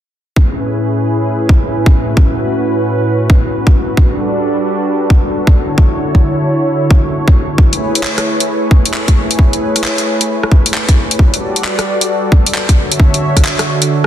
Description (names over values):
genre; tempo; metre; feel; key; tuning
UK garage, two-step garage; 133 BPM; 4/4; swing 64% on 16ths; A major; A4 = 440 Hz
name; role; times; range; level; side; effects
warm analog pad; sustained chords; 0.4-14.1 s; A2 to E5; -15 LUFS; equal; wide subtle chorus, sidechain pumping
electronic kick drum; drums; 0.4-13.4 s; none; -10 LUFS; equal; none
garage drum kit; drums; 7.7-14.1 s; handclaps, hi-hat, rim click; -16 LUFS; left 1 dB; soft clipping on snare
room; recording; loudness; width
light reverb, digital ambience; dense, heavily limited modern master; -10 LUFS; side -11 dB against mid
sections
0.4-14.1 A section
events
none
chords
0.4 Amaj9; 4.0 Gmaj9; 5.6 Dmaj9; 7.6 Amaj9; 11.2 Gmaj9; 12.8 Dmaj9